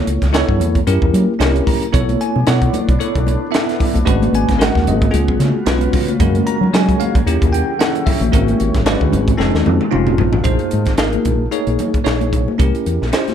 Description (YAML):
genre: electric jazz fusion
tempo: 113 BPM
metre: 4/4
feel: swing 56% on 16ths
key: F# minor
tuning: A4 = 444 Hz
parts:
  - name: bell-like tine electric piano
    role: accompaniment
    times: 0.0-13.3 s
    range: G#3 to A#5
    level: -18 LUFS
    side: right 1 dB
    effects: fast stereo tremolo
  - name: fingered electric bass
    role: bass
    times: 0.1-13.3 s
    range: F1 to F#3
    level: -17 LUFS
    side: equal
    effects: none
  - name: crisp fusion drum kit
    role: drums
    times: 0.1-13.3 s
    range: hi-hat, kick drum, snare drum, toms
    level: -18 LUFS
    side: equal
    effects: none
  - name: congas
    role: percussion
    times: 0.2-13.3 s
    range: none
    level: -24 LUFS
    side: left 5 dB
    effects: none
  - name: glassy FM pad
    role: sustained chords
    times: 2.3-10.4 s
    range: C#3 to A#4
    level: -25 LUFS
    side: left 2 dB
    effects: ensemble chorus, built-in reverb
room: light reverb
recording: dark, warm production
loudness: -13 LUFS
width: side -9 dB against mid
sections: 0.0-10.5 A section; 10.5-13.3 B section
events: tine electric piano fill 1.1-1.9; drum fill 9.4-10.5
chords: 0.0 C#m7b5; 0.9 F#7b9; 1.9 Bm9; 4.1 G#m9; 5.1 C#7; 6.2 F#add9; 7.3 D#7b9; 8.3 G#m7b5; 9.4 F7b13; 10.5 Bbm11; 12.6 C7b9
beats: 0.34 0.87 1.41 | 1.94 2.47 3.00 3.54 | 4.07 4.60 5.13 5.67 | 6.20 6.73 7.27 7.80 | 8.33 8.86 9.40 9.93 | 10.46 11.00 11.53 12.06 | 12.60 13.13